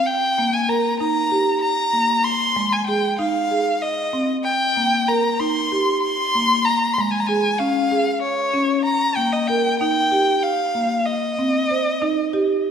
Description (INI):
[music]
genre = contemporary instrumental, chamber music in an uneven meter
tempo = 191 BPM (eighths)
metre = 7/8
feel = straight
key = C minor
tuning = A4 = 440 Hz
[part]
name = warm violin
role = melody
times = 0.0-12.6 s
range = Db5 to C6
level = -20 LUFS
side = left 1 dB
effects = none
[part]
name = marimba with medium mallets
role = arpeggios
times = 0.4-12.7 s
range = Ab3 to C5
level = -22 LUFS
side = right 1 dB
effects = none
[sound]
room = wet concert hall reverb, RT60 2.1 s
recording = minimal, uncompressed stereo recording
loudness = -17 LUFS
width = side -7 dB against mid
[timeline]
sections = 0.0-12.7 A section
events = none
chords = 0.1 Eb; 2.3 Fm7; 4.5 Cm7; 6.7 Db; 8.9 Ebadd9; 11.1 Cm